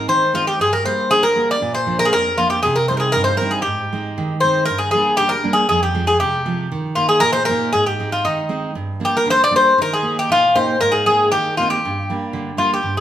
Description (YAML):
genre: greek folk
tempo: 118 BPM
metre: 2/4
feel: straight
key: G phrygian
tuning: A4 = 442 Hz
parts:
  - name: Greek bouzouki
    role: melody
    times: 0.0-13.0 s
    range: Eb4 to D5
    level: -16 LUFS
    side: left 1 dB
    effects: none
  - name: picked steel-string acoustic guitar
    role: accompaniment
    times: 0.0-13.0 s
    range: F2 to G4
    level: -23 LUFS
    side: right 3 dB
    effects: none
room: moderate large studio reverb, RT60 1.1 s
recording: band playing live in one room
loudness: -15 LUFS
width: side -11 dB against mid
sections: 0.0-4.7 A section; 4.7-12.8 B section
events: none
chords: 0.0 Ab; 0.6 Gm; 1.6 Bb; 2.6 Cm; 3.7 Ab; 4.7 Gm; 5.7 Fm; 6.7 Eb; 7.7 Ab; 8.8 Gm; 9.8 Eb; 10.8 Abadd9; 11.8 Gm